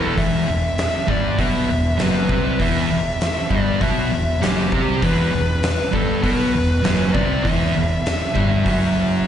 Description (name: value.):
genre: stoner and doom metal.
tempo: 99 BPM.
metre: 4/4.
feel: straight.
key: E minor.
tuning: A4 = 439 Hz.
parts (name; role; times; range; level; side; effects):
fuzz lead guitar; melody; 0.0-9.2 s; G4 to E5; -24 LUFS; left 1 dB; distortion, slapback echo.
thick fuzz guitar; riff; 0.0-9.3 s; E2 to C4; -23 LUFS; left 7 dB; distortion.
thick fuzz guitar; riff; 0.0-9.3 s; E2 to C4; -22 LUFS; right 6 dB; distortion, slapback echo.
fuzz fingered electric bass; bass; 0.0-9.3 s; E1 to C2; -25 LUFS; equal; overdrive.
oversized low-tuned drum kit; drums; 0.2-8.8 s; hi-hat, kick drum, snare drum; -24 LUFS; equal; none.
room: light reverb, small room reverb.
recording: live gig heard through the venue's PA, recital hall reverb, nothing above 10.6 kHz.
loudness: -17 LUFS.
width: side -9 dB against mid.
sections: 0.0-9.3 A section.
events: none.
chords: 0.0 Em.